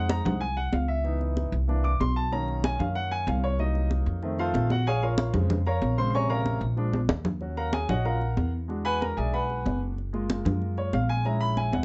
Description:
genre	Afro-Cuban jazz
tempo	188 BPM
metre	4/4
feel	straight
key	Bb minor, Eb minor from 7.4 s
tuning	A4 = 440 Hz
part	warm concert grand piano	accompaniment	0.0-11.8 s	C3 to D6	-32 LUFS	equal	none
part	upright bass	bass	0.0-11.8 s	F#1 to F#2	-30 LUFS	equal	none
part	congas	percussion	0.1-11.8 s	none	-32 LUFS	equal	none
room	light reverb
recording	nothing above 8.0 kHz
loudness	-27 LUFS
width	mono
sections	0.0-7.4 A section; 7.4-11.8 A section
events	grand piano solo 0.0-11.8; drum fill 6.9-7.4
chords	0.0 Fm7; 1.1 Dbm7; 1.7 C9; 2.3 Bmaj7; 3.6 Cm7b5; 4.2 F7; 4.9 Bbm7; 6.8 Bb7; 7.4 Ebm9; 8.7 E9; 10.0 Gbmaj9; 11.3 Bbm7b5

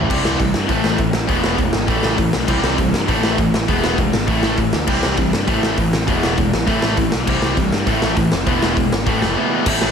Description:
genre	punk rock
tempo	201 BPM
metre	4/4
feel	straight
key	A minor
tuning	A4 = 440 Hz
part	crunchy overdriven guitar	riff	0.0-9.7 s	A2 to E4	-23 LUFS	equal	none
part	distorted electric guitar	riff	0.0-9.9 s	E2 to C4	-22 LUFS	right 11 dB	overdrive
part	tight distorted guitar	riff	0.0-9.9 s	A2 to E4	-22 LUFS	left 13 dB	distortion
part	modern bright picked electric bass	bass	0.0-9.9 s	E1 to G2	-24 LUFS	equal	none
part	raw garage drum kit	drums	0.1-9.9 s	crash cymbal, hi-hat, kick drum, snare drum	-19 LUFS	equal	none
room	light reverb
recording	none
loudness	-15 LUFS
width	side -7 dB against mid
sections	0.1-9.7 A section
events	none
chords	0.1 C; 0.7 Am; 1.3 E; 1.9 Am; 2.5 C; 3.1 Am; 3.7 E; 4.3 Am; 4.9 C; 5.5 Am; 6.1 E; 6.7 Am; 7.3 C; 7.9 Am; 8.5 E; 9.1 Am; 9.4 Em

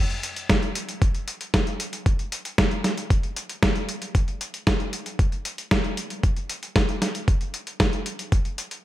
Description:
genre	italo disco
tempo	115 BPM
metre	4/4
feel	straight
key	none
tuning	none
part	dusty soul sampler-style drum kit	drums	0.1-8.8 s	hi-hat, snare drum	-25 LUFS	equal	overdrive, gated reverb
part	electronic kick drum	drums	0.5-8.4 s	none	-22 LUFS	equal	overdrive
room	light reverb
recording	none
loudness	-22 LUFS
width	side -15 dB against mid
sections	0.0-8.8 A section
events	none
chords	none

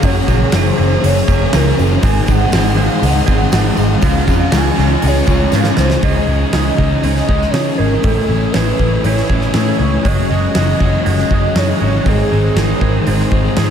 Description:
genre	rock, shoegaze and dream pop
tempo	120 BPM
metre	4/4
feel	straight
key	Db major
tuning	A4 = 440 Hz
part	warm velvety synth lead	melody	0.0-13.5 s	Ab4 to Ab5	-21 LUFS	right 2 dB	chorus, tape echo
part	string machine, full ensemble	sustained chords	0.0-6.0 s	F4 to Db6	-25 LUFS	equal	ensemble chorus
part	crunchy overdriven guitar	riff	0.0-13.7 s	Gb2 to Gb4	-21 LUFS	equal	ensemble chorus
part	thick fuzz guitar	riff	0.0-13.7 s	Gb2 to Db4	-21 LUFS	left 8 dB	distortion, lush chorus
part	twangy electric guitar	riff	0.0-13.7 s	Ab2 to Ab4	-22 LUFS	right 7 dB	reverse reverb
part	vintage muted picked electric bass	bass	0.0-13.7 s	Gb1 to Db3	-16 LUFS	equal	none
part	huge arena drum kit	drums	0.0-13.7 s	hi-hat, kick drum, snare drum	-17 LUFS	equal	none
part	tambourine	percussion	0.0-5.9 s	none	-39 LUFS	right 11 dB	none
room	moderate huge ambient reverb, RT60 6.8 s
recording	dreamy mix soaked in reverb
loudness	-11 LUFS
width	side -8 dB against mid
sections	0.0-6.0 A section; 6.0-13.7 B section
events	drum fill 5.5-6.0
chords	0.0 Gbadd9; 2.0 Ab; 4.0 Dbadd9; 6.0 Dbsus2; 8.0 Amaj7; 10.0 Gbsus2; 12.1 Ab

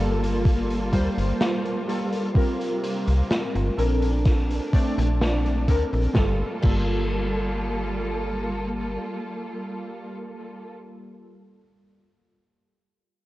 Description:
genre	vaporwave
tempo	63 BPM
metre	4/4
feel	straight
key	G minor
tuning	A4 = 441 Hz
part	warbly lo-fi synth keys	accompaniment	0.0-11.4 s	G3 to D5	-28 LUFS	equal	wide subtle chorus, vintage 12-bit sampler grit, analog delay
part	rich symphonic string section	sustained chords	0.0-10.7 s	C3 to A4	-32 LUFS	equal	none
part	slap-like FM bass	bass	0.0-9.0 s	G1 to D2	-25 LUFS	equal	none
part	raw garage drum kit	drums	0.2-6.9 s	crash cymbal, hi-hat, snare drum	-31 LUFS	equal	none
part	electronic kick drum	drums	0.4-6.9 s	none	-20 LUFS	equal	overdrive
room	light reverb, small room ambience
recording	worn, warbling old tape, cassette tape, warbly pitch drift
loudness	-22 LUFS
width	side -17 dB against mid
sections	0.0-6.2 A section; 6.2-10.0 B section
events	none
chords	0.0 Gm9; 2.4 C7sus4; 3.8 Bbmaj9; 6.2 Gm9

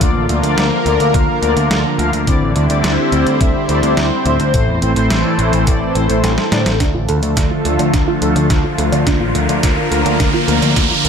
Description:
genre	synthwave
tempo	106 BPM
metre	4/4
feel	straight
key	D minor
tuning	A4 = 440 Hz
part	lush unison pad	sustained chords	0.0-11.1 s	D3 to C5	-17 LUFS	equal	chorus, phaser, sidechain pumping
part	mellow synth brass	stabs	0.0-11.1 s	A2 to F5	-20 LUFS	left 3 dB	chorus, ping-pong delay
part	picked electric bass	bass	0.0-11.1 s	A1 to A2	-18 LUFS	equal	sidechain pumping
part	detuned 8-bit digital drum machine	drums	0.0-11.1 s	hi-hat, snare drum	-22 LUFS	equal	high-pass filter on snare, high-pass filter on hats, high-pass filter on room
part	electronic kick drum	drums	0.0-10.9 s	none	-17 LUFS	equal	none
part	soft round pluck	arpeggios	6.8-11.1 s	D4 to D5	-23 LUFS	right 4 dB	lush chorus, ping-pong delay
part	riser	sound effects	8.2-11.1 s	none	-21 LUFS	right 2 dB	none
room	light reverb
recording	none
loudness	-12 LUFS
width	side -7 dB against mid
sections	0.0-6.8 A section; 6.8-11.1 B section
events	drum fill 6.2-6.8, 6.8-11.1; filter sweep on analog polysynth 6.8-11.1; riser 8.2-11.1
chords	0.0 Bb; 2.3 Cadd9; 4.5 Am; 6.8 Dm; 9.1 Bb

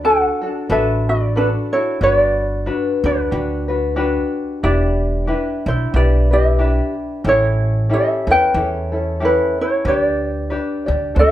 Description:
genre	Hawaiian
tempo	92 BPM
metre	4/4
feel	swing 57% on 8ths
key	G major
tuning	A4 = 437 Hz
part	ukulele	melody	0.0-11.3 s	D4 to G5	-17 LUFS	equal	none
part	tenor ukulele	accompaniment	0.0-11.3 s	C#4 to D5	-22 LUFS	left 3 dB	none
part	upright bass	bass	0.0-11.3 s	E1 to E2	-19 LUFS	right 1 dB	none
room	moderate large studio reverb, RT60 1.2 s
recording	band playing live in one room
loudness	-15 LUFS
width	side -13 dB against mid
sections	0.0-2.0 A section; 2.0-11.3 B section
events	none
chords	0.0 D6; 2.0 Gmaj7; 4.6 Em7; 7.2 A7; 9.9 G/D

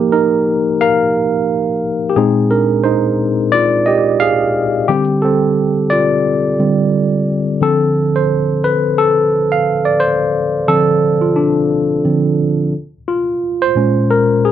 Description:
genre	R&B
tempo	88 BPM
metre	4/4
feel	swing 57% on 16ths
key	unclear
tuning	A4 = 440 Hz
part	barky tine electric piano	solo	0.0-14.5 s	Bb2 to F5	-12 LUFS	moving between left 5 dB and right 5 dB	auto-pan
room	wet studio reverb, RT60 0.6 s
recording	none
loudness	-12 LUFS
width	side -10 dB against mid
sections	0.0-7.6 A section; 7.6-14.5 B section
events	tine electric piano solo 0.0-7.6, 7.6-14.5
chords	0.0 F7sus4; 2.2 Bb9sus4; 4.9 D7sus4; 7.6 Dm7; 12.7 Bbm7

